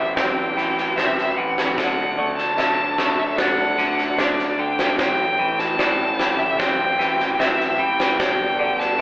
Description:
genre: post-rock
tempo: 75 BPM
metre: 4/4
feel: straight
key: A dorian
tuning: A4 = 440 Hz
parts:
  - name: rich violin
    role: melody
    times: 0.0-9.0 s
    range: D5 to A5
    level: -22 LUFS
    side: equal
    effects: none
  - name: warm studio string section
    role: sustained chords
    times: 0.0-9.0 s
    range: D3 to A5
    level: -31 LUFS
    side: left 1 dB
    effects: none
  - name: clean electric guitar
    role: arpeggios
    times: 0.0-9.0 s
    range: G2 to D4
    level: -25 LUFS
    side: equal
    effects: none
  - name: felt-muted upright piano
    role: arpeggios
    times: 0.0-9.0 s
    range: C5 to E5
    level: -31 LUFS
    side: right 1 dB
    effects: none
  - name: fuzz fingered electric bass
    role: bass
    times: 0.0-9.0 s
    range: G1 to D2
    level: -28 LUFS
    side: equal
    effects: overdrive
  - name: huge arena drum kit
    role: drums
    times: 0.2-8.9 s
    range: kick drum, snare drum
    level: -22 LUFS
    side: equal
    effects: none
room: moderate large studio reverb, RT60 1.0 s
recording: band playing live in one room, telephone sound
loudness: -17 LUFS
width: side -21 dB against mid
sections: 0.0-9.0 A section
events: none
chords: 0.0 Am7; 1.8 D; 5.0 Am7; 8.2 G5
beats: 0.17 0.97 | 1.78 2.58 3.38 4.18 | 4.99 5.79 6.59 7.39 | 8.19 9.00

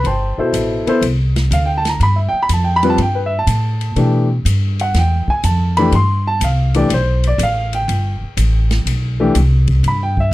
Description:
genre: modal jazz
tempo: 123 BPM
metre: 4/4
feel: swing 68% on 8ths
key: G mixolydian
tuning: A4 = 441 Hz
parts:
  - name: warm grand piano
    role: accompaniment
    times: 0.0-10.3 s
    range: B2 to C6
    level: -17 LUFS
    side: left 1 dB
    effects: none
  - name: upright bass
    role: bass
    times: 0.0-10.3 s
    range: G1 to B2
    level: -15 LUFS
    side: equal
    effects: none
  - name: swinging big-band drum kit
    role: drums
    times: 0.0-10.2 s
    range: hi-hat, kick drum, ride cymbal, snare drum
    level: -26 LUFS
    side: left 1 dB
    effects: none
room: little or no reverb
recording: dry, close 1970s-style studio recording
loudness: -13 LUFS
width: side -17 dB against mid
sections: 0.0-10.3 A section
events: none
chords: 0.0 Gsus4; 2.0 Em; 5.9 Gsus24; 9.8 Em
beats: | 0.05 0.54 1.03 1.52 | 2.00 2.50 2.98 3.47 | 3.96 4.45 4.94 5.43 | 5.92 6.41 6.90 7.39 | 7.88 8.37 8.86 9.35 | 9.84 10.33

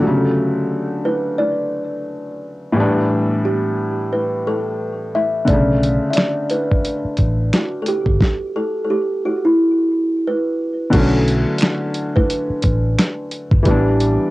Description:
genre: lo-fi hip hop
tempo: 88 BPM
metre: 4/4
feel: swing 59% on 16ths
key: B minor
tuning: A4 = 439 Hz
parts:
  - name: kalimba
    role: melody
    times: 0.0-14.3 s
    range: E4 to E5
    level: -20 LUFS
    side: equal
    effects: low-pass filter, cassette tape, analog delay
  - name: felt-muted upright piano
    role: accompaniment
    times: 0.0-14.3 s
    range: A2 to D4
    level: -20 LUFS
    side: left 1 dB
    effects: cassette tape, low-pass filter
  - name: vintage muted fingered electric bass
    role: bass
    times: 5.5-14.2 s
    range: G1 to B1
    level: -19 LUFS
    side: equal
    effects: none
  - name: dusty soul sampler-style drum kit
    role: drums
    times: 5.5-14.2 s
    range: crash cymbal, finger snaps, hi-hat, kick drum, snare drum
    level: -17 LUFS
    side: equal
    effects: cassette tape
  - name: finger snap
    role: percussion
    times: 11.6-13.2 s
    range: none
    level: -30 LUFS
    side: right 3 dB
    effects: none
room: moderate booth ambience, RT60 0.2 s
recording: home recording on cassette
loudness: -16 LUFS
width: side -19 dB against mid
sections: 0.0-10.9 A section; 10.9-14.3 B section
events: none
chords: 0.0 Bm9/C# (rootless); 2.8 A7sus4; 5.5 Bm7; 8.2 N.C.; 10.9 Bm7; 13.7 A7sus4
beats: | 0.03 0.71 1.39 2.07 | 2.75 3.44 4.12 4.80 | 5.48 6.16 6.84 7.53 | 8.21 8.89 9.57 10.25 | 10.94 11.62 12.30 12.98 | 13.66

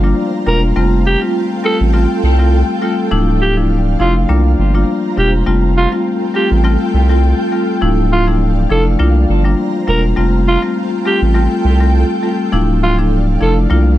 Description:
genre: afrobeats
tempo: 102 BPM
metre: 4/4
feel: swing 55% on 16ths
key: F major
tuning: A4 = 440 Hz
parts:
  - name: marimba with medium mallets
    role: accompaniment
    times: 0.0-13.9 s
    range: F3 to F4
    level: -16 LUFS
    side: left 3 dB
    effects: none
  - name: ethereal airy pad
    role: sustained chords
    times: 0.0-14.0 s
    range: F4 to G5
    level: -22 LUFS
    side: right 3 dB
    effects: ensemble chorus, built-in reverb, tremolo, plate reverb
  - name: saturated sub bass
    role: bass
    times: 0.0-14.0 s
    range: D1 to C2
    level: -13 LUFS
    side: equal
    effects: none
  - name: growling alto saxophone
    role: melody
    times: 0.5-13.6 s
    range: F4 to Bb4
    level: -18 LUFS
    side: right 2 dB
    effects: plate reverb, digital delay
room: light reverb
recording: none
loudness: -11 LUFS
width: side -14 dB against mid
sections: 0.0-14.0 A section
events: none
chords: 0.0 C7sus4; 0.8 Fadd9; 3.1 Dmadd9; 4.3 C7sus4; 5.5 Fadd9; 7.8 Dmadd9; 9.0 C7sus4; 10.2 Fadd9; 12.5 Dmadd9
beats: 0.17 | 0.76 1.35 1.94 2.52 | 3.11 3.70 4.29 4.88 | 5.47 6.05 6.64 7.23 | 7.82 8.41 8.99 9.58 | 10.17 10.76 11.35 11.94 | 12.52 13.11 13.70

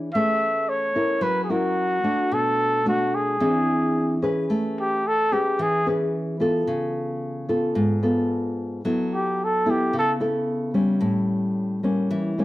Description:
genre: bossa nova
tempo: 110 BPM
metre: 4/4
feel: straight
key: A major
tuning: A4 = 438 Hz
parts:
  - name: nylon-string guitar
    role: accompaniment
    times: 0.0-12.4 s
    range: G#2 to C#5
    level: -23 LUFS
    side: equal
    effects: none
  - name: mellow trumpet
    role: melody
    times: 0.1-10.1 s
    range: F#4 to E5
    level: -22 LUFS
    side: equal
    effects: none
room: moderate studio reverb, RT60 0.7 s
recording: none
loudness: -20 LUFS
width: side -16 dB against mid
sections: 0.0-4.5 A section; 4.5-12.4 B section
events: trumpet solo 4.5-12.4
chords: 0.1 Amaj9; 1.2 F#7; 2.3 Bm7; 3.4 E7b13; 4.5 Amaj9; 6.7 C#7b13; 8.8 F#m7; 11.0 A7b9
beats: | 0.14 0.68 1.23 1.77 | 2.32 2.86 3.41 3.95 | 4.50 5.04 5.59 6.13 | 6.67 7.22 7.76 8.30 | 8.85 9.39 9.93 10.48 | 11.02 11.56 12.11

